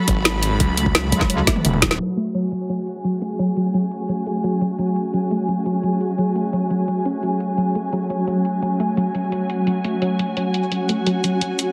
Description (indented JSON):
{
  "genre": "dark technical drum and bass",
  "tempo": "172 BPM",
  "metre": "4/4",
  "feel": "straight",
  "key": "F# minor",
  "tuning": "A4 = 439 Hz",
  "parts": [
    { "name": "dark studio string section", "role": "texture", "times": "0.0-11.7 s", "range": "A3 to B5", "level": "-29 LUFS", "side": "equal", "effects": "sidechain pumping" },
    { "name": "soft round pluck", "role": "arpeggios", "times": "0.1-11.5 s", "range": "F#3 to C#4", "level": "-25 LUFS", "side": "equal", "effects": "analog chorus, sidechain pumping, dub echo" },
    { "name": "snarling distorted saw bass", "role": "bass", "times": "0.1-2.0 s", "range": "E1 to C#2", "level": "-25 LUFS", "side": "equal", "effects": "tube saturation, sidechain pumping" },
    { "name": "drum and bass drum kit", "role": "drums", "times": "0.1-11.7 s", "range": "crash cymbal, hi-hat, shaker, snare drum, toms", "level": "-22 LUFS", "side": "equal", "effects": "low-pass filter on snare, low-pass filter on hats, low-pass filter on toms, low-pass filter on cymbals, low-pass filter on perc, low-pass filter on room" },
    { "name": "electronic kick drum", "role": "drums", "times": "0.1-1.9 s", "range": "none", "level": "-23 LUFS", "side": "equal", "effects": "none" },
    { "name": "metallic wobble bass", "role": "bass", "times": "1.1-1.5 s", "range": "C#2", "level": "-22 LUFS", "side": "equal", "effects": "chorus" },
    { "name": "swarming drone", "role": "sustained chords", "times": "3.3-11.7 s", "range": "F#3 to G#4", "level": "-27 LUFS", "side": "equal", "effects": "built-in reverb, vintage 12-bit sampler grit, sidechain pumping" }
  ],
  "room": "moderate lush hall reverb, RT60 1.8 s",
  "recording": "heavily compressed radio sound, multiband compression, low-pass filter",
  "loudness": "-21 LUFS",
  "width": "mono",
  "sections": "0.0-2.0 A section; 2.0-11.7 B section",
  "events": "drum fill 1.5-2.0; band accent 1.9; filter sweep on drum 2.0-11.7; filter sweep on synth drone 2.0-11.7; filter sweep 2.0-11.7",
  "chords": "0.0 F#madd9",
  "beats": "0.25 | 0.60 0.95 1.30 1.65 | 2.00 2.35 2.69 3.04 | 3.39 3.74 4.09 4.44 | 4.79 5.14 5.48 5.83 | 6.18 6.53 6.88 7.23 | 7.58 7.93 8.28 8.62 | 8.97 9.32 9.67 10.02 | 10.37 10.72 11.07 11.41"
}